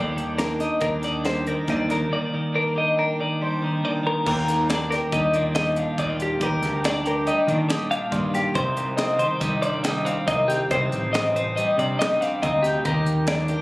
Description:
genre	math rock and midwest emo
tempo	140 BPM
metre	5/4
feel	straight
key	Eb major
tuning	A4 = 440 Hz
part	twelve-string electric guitar	accompaniment	0.0-13.6 s	Eb2 to G4	-26 LUFS	right 1 dB	none
part	twelve-string electric guitar	arpeggios	0.0-13.6 s	G4 to F5	-24 LUFS	left 1 dB	digital delay
part	fuzz picked electric bass	bass	0.0-13.5 s	A1 to Eb3	-27 LUFS	equal	overdrive
part	crisp fusion drum kit	drums	0.2-13.6 s	crash cymbal, hi-hat, kick drum, snare drum	-30 LUFS	equal	none
room	moderate studio reverb, RT60 0.6 s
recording	recorded on a phone in the room, club reverb, compression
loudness	-20 LUFS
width	side -20 dB against mid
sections	0.0-4.3 A section; 4.3-13.6 B section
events	none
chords	0.0 Ebmaj7; 8.6 Cm; 12.9 Ebmaj7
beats	0.39 0.82 1.25 1.68 | 2.11 2.54 2.98 3.41 3.84 | 4.27 4.70 5.13 5.56 5.99 | 6.42 6.84 7.27 7.70 8.13 | 8.56 8.99 9.42 9.85 10.28 | 10.71 11.14 11.57 12.00 12.43 | 12.86 13.28

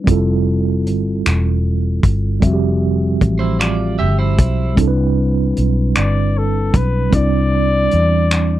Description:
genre	slow six-eight R&B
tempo	51 BPM (dotted quarters)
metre	6/8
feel	straight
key	unclear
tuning	A4 = 441 Hz
part	mellow tine electric piano	accompaniment	0.0-8.6 s	F3 to E5	-19 LUFS	right 3 dB	medium stereo tremolo
part	vintage muted fingered electric bass	bass	0.1-8.6 s	E1 to E2	-17 LUFS	equal	none
part	warm soul drum kit	drums	0.1-8.5 s	finger snaps, hi-hat, kick drum	-15 LUFS	equal	none
part	electric guitar at the edge of break-up	second line	3.4-4.8 s	E4 to E5	-23 LUFS	right 4 dB	none
part	warm flugelhorn	melody	6.0-8.6 s	A4 to D5	-20 LUFS	left 3 dB	slapback echo
room	little or no reverb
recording	dry, close 1970s-style studio recording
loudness	-14 LUFS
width	side -13 dB against mid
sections	0.0-8.6 A section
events	none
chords	0.1 Fmaj9; 4.8 Cmaj9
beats	| 0.07 1.25 | 2.42 3.60 | 4.78 5.95 | 7.13 8.31

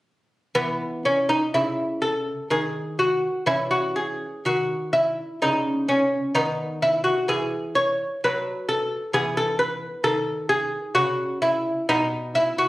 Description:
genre	classical, baroque-style dance for lute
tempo	63 BPM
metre	3/4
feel	uneven beats, rubato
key	unclear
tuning	A4 = 440 Hz
part	lute	solo	0.5-12.7 s	B2 to C#5	-21 LUFS	equal	none
room	moderate studio reverb, RT60 0.6 s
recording	recorded on a phone in the room, studio reverb, compression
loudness	-21 LUFS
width	side -18 dB against mid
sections	0.5-12.7 A section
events	none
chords	0.5 C#madd9; 6.3 B/D#; 9.1 E5; 11.9 Asus2 (rootless)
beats	| 0.54 1.53 2.49 | 3.46 4.45 5.41 | 6.34 7.29 8.22 | 9.13 10.04 10.96 | 11.89

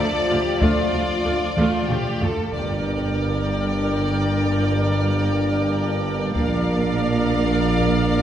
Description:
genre	cinematic, epic orchestral film score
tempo	63 BPM (dotted quarters)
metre	6/8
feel	straight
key	G minor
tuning	A4 = 444 Hz
part	clear symphonic violin section	melody	0.0-8.2 s	D5 to G5	-29 LUFS	left 1 dB	none
part	clear symphonic violin section	second line	0.0-8.2 s	F4 to D5	-28 LUFS	equal	none
part	rich studio viola section	accompaniment	0.0-8.2 s	A3 to Bb4	-29 LUFS	right 1 dB	none
part	warm French horn section	sustained chords	0.0-8.2 s	F3 to F4	-26 LUFS	left 1 dB	none
part	rich studio cello section	bass	0.0-8.2 s	D2 to Bb2	-26 LUFS	right 2 dB	none
part	rich symphonic double bass section	bass	0.0-8.2 s	G1 to D2	-26 LUFS	right 1 dB	none
part	taiko ensemble	drums	0.6-8.1 s	none	-27 LUFS	equal	none
part	warm tuba	bass	2.5-8.2 s	G1 to Bb1	-27 LUFS	right 2 dB	none
room	wet church reverb, RT60 3.4 s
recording	recorded in a church or concert hall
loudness	-19 LUFS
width	side -10 dB against mid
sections	0.0-2.5 A section; 2.5-8.2 B section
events	drum fill 1.6-2.5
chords	0.0 Dm; 2.5 Gm; 6.4 Bb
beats	| 0.61 1.57 | 2.53 3.48 | 4.44 5.40 | 6.35 7.31

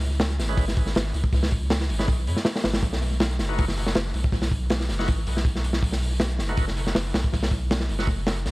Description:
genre	drum and bass, jungle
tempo	160 BPM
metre	4/4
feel	straight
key	unclear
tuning	A4 = 440 Hz
part	saturated sub bass	bass	0.0-8.5 s	F#1 to F#2	-26 LUFS	equal	tube saturation
part	crunchy breakbeat drum kit	drums	0.0-8.5 s	hi-hat, kick drum, snare drum	-24 LUFS	equal	tape echo
part	overdriven tonewheel organ	stabs	0.5-8.1 s	G#3 to B4	-35 LUFS	equal	slow rotary speaker, dub echo
room	little or no reverb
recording	echo-heavy mix, vinyl crackle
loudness	-22 LUFS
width	side -21 dB against mid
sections	0.0-8.5 A section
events	none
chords	0.0 C#m7; 2.8 B7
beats	0.20 0.58 0.95 | 1.33 1.71 2.08 2.46 | 2.83 3.21 3.58 3.96 | 4.33 4.71 5.08 5.46 | 5.83 6.21 6.58 6.96 | 7.33 7.71 8.08 8.46

